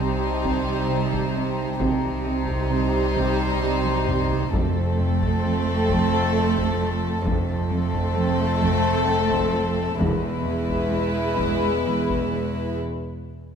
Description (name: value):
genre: cinematic, suspense film score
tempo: 66 BPM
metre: 3/4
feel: straight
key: unclear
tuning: A4 = 440 Hz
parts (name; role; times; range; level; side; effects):
- warm symphonic violin section; melody; 0.0-12.8 s; A4 to C5; -28 LUFS; left 4 dB; none
- warm symphonic violin section; second line; 0.0-12.8 s; C4 to E4; -29 LUFS; left 1 dB; none
- dark symphonic viola section; accompaniment; 0.0-12.8 s; G3 to A3; -27 LUFS; right 2 dB; none
- warm studio cello section; riff; 0.0-12.6 s; E2 to C4; -30 LUFS; right 2 dB; none
- dark symphonic double bass section; bass; 0.0-12.8 s; E1 to C2; -28 LUFS; right 1 dB; none
- warm symphonic cello section; bass; 0.0-12.8 s; E2 to C3; -28 LUFS; right 3 dB; none
- warm symphonic violin section; texture; 0.0-4.0 s; G5 to Bb5; -36 LUFS; left 4 dB; none
- taiko ensemble; drums; 0.4-12.8 s; none; -32 LUFS; left 1 dB; none
room: moderate scoring stage reverb, RT60 2.1 s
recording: minimal, uncompressed stereo recording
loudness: -20 LUFS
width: side -7 dB against mid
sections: 0.0-13.6 A section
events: drum fill 3.8-4.5; break 12.8-13.6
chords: 0.0 Cm; 4.5 F; 10.0 E